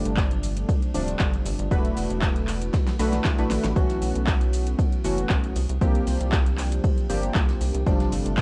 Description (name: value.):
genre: deep house.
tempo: 117 BPM.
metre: 4/4.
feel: swing 53% on 16ths.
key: unclear.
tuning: A4 = 441 Hz.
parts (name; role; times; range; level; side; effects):
warm analog keys; stabs; 0.0-8.4 s; C3 to B4; -30 LUFS; equal; chorus, analog delay.
rubbery square bass; bass; 0.0-8.4 s; D1 to C2; -30 LUFS; equal; sidechain pumping.
deep house drum kit; drums; 0.1-8.4 s; handclaps, hi-hat, shaker, snare drum; -34 LUFS; equal; overdrive, vintage 12-bit sampler grit.
electronic kick drum; drums; 0.2-8.4 s; none; -26 LUFS; equal; overdrive, vintage 12-bit sampler grit.
jazz brush drum kit; drums; 0.2-8.4 s; ride cymbal, snare drum; -46 LUFS; equal; sidechain pumping on cymbals, high-pass filter on cymbals, vintage 12-bit sampler grit, high-pass filter on snare, high-pass filter on room.
room: little or no reverb.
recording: cassette tape.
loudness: -24 LUFS.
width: mono.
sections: 0.0-8.4 A section.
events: drum fill 2.7-3.8.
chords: 0.0 G9sus4; 1.7 E9sus4; 3.8 B9sus4; 5.6 C9sus4; 7.9 G9sus4.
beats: 0.17 0.69 1.20 | 1.71 2.22 2.74 3.25 | 3.76 4.28 4.79 5.30 | 5.81 6.33 6.84 7.35 | 7.87 8.38.